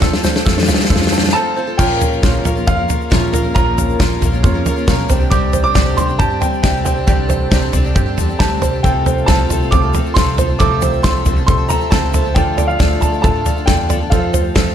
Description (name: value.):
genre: indie folk with a building arrangement.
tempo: 136 BPM.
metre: 4/4.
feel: straight.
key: F major.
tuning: A4 = 439 Hz.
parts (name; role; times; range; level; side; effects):
felt-muted upright piano; accompaniment; 0.0-14.7 s; F1 to E5; -26 LUFS; right 6 dB; slapback echo.
picked twelve-string acoustic guitar; accompaniment; 0.0-14.7 s; Bb2 to Bb4; -24 LUFS; left 6 dB; slapback echo.
hand-pumped harmonium; sustained chords; 0.0-14.7 s; C3 to E5; -27 LUFS; left 2 dB; none.
open-back banjo; arpeggios; 0.0-14.7 s; F4 to A5; -24 LUFS; right 6 dB; slapback echo.
upright bass; bass; 0.0-14.7 s; A1 to G2; -20 LUFS; equal; none.
natural country drum kit; drums; 0.0-14.7 s; crash cymbal, kick drum, snare drum, toms; -15 LUFS; equal; none.
egg shaker; percussion; 0.0-14.7 s; none; -31 LUFS; left 14 dB; none.
dark upright piano; melody; 1.3-14.7 s; F5 to D6; -20 LUFS; equal; slapback echo.
room: light reverb, small room ambience.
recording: lossy compression artefacts.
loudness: -12 LUFS.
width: side -9 dB against mid.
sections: 0.0-1.8 A section; 1.8-14.7 B section.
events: build-up 0.0-1.8; drum fill 0.0-1.3; break 1.3-1.8.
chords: 0.0 F; 1.8 Bbm; 5.1 Csus2; 8.8 F/C; 12.4 Dm; 14.1 F.